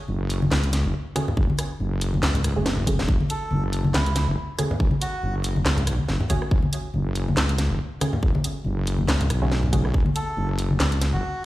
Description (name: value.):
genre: deep dubstep.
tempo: 140 BPM.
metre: 4/4.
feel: swing 56% on 16ths, half-time.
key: F# minor.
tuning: A4 = 440 Hz.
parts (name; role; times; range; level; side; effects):
wobble bass; bass; 0.1-11.2 s; E1 to C#2; -23 LUFS; equal; chorus.
congas; percussion; 0.1-11.2 s; none; -28 LUFS; left 1 dB; none.
garage drum kit; drums; 0.3-11.1 s; handclaps, hi-hat, rim click, snare drum; -28 LUFS; equal; none.
filtered dub chord stab; stabs; 1.2-9.9 s; A3 to G#4; -33 LUFS; right 4 dB; chorus, dub echo.
electronic kick drum; drums; 1.4-10.0 s; none; -22 LUFS; equal; none.
melodica; melody; 3.3-5.3, 10.2-11.4 s; E4 to A4; -32 LUFS; right 1 dB; dub echo.
room: light reverb, digital ambience.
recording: played on a big sound system in a bare room, large studio reverb.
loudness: -21 LUFS.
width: side -16 dB against mid.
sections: 0.0-11.4 A section.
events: drum fill 2.7-3.1.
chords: 0.0 F#madd9.